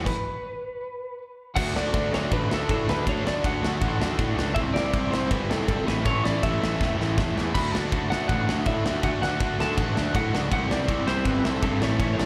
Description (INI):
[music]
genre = punk rock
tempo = 161 BPM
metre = 4/4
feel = straight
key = unclear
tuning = A4 = 440 Hz
[part]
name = lightly driven lead guitar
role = melody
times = 0.0-12.3 s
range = A4 to B5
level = -33 LUFS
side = equal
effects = slapback echo, digital delay
[part]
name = cranked stack guitar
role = riff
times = 0.0-12.3 s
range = A2 to D4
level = -34 LUFS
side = equal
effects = overdrive, slapback echo
[part]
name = tight distorted guitar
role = riff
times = 0.0-12.3 s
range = A2 to F#4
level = -36 LUFS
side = equal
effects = distortion, slapback echo
[part]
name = fuzz picked electric bass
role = bass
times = 0.0-12.3 s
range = E1 to A2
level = -30 LUFS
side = equal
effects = overdrive
[part]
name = big rock drum kit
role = drums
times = 0.1-12.3 s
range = crash cymbal, kick drum, ride cymbal, snare drum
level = -30 LUFS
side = equal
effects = none
[part]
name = crunchy overdriven guitar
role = riff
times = 1.6-12.3 s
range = A2 to D4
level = -37 LUFS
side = equal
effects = none
[sound]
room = little or no reverb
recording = live gig heard through the venue's PA, recital hall reverb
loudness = -25 LUFS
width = mono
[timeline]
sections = 0.0-1.6 A section; 1.6-12.3 B section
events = stop 0.1-1.6; drum fill 6.8-7.5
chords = 0.0 N.C.; 1.6 D; 4.6 C; 5.9 A; 7.5 D; 10.5 C